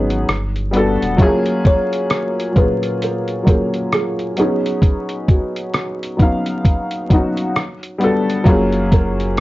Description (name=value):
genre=lo-fi hip hop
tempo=66 BPM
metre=4/4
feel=swing 62% on 16ths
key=F# major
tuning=A4 = 440 Hz
part: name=dark upright piano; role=accompaniment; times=0.0-9.4 s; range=A#2 to E#5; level=-18 LUFS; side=left 1 dB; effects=none
part: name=warm sub bass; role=bass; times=0.0-1.2, 8.5-9.4 s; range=E1 to G#1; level=-22 LUFS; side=equal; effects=tube saturation
part: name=lo-fi sampler-style drum kit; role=drums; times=0.1-9.4 s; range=hi-hat, kick drum, rim click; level=-15 LUFS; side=equal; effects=none
part: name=kalimba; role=melody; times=1.7-9.4 s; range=F#4 to C#5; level=-23 LUFS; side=right 1 dB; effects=tape echo
room=moderate small room reverb, RT60 0.5 s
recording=worn, warbling old tape, cassette tape, vinyl crackle, warbly pitch drift, nothing above 7.7 kHz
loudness=-14 LUFS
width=side -18 dB against mid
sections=0.0-9.4 A section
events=none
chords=0.3 Gmaj7; 1.2 F#maj7; 4.4 B6; 7.5 Gmaj7; 8.5 F#maj7